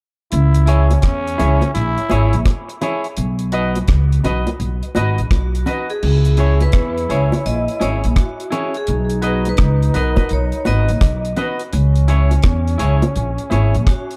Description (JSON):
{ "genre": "roots reggae", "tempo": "84 BPM", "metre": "4/4", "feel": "swing 65% on 16ths", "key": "C# dorian", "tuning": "A4 = 441 Hz", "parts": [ { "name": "growling trombone", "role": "second line", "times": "0.3-14.2 s", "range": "C#4 to E4", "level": "-28 LUFS", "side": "equal", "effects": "dub echo" }, { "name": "upright bass", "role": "bass", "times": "0.3-13.9 s", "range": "G#1 to E2", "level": "-18 LUFS", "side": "equal", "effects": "none" }, { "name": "deep reggae drum kit", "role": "drums", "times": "0.3-14.2 s", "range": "crash cymbal, hi-hat, kick drum, rim click", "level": "-21 LUFS", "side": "equal", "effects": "none" }, { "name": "semi-hollow electric guitar", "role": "accompaniment", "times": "0.7-13.8 s", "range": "E4 to D#5", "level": "-27 LUFS", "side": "equal", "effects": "dub echo" }, { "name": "warm grand piano", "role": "stabs", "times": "0.7-13.7 s", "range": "B3 to E5", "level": "-31 LUFS", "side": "equal", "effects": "none" }, { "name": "bongos", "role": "percussion", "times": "0.9-13.7 s", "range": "none", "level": "-28 LUFS", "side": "equal", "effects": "none" }, { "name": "vibraphone with hard mallets", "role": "melody", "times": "5.3-14.2 s", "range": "F#4 to D#5", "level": "-27 LUFS", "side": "equal", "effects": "dub echo" } ], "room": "light reverb", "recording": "dark, warm production", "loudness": "-17 LUFS", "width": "mono", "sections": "0.3-6.0 A section; 6.0-14.2 B section", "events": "none", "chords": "0.3 C#m; 3.2 B; 6.0 C#m; 8.9 B; 11.7 C#m", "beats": "| 0.32 1.03 1.75 2.46 | 3.17 3.88 4.60 5.31 | 6.03 6.74 7.45 8.16 | 8.88 9.59 10.30 11.02 | 11.73 12.44 13.15 13.87" }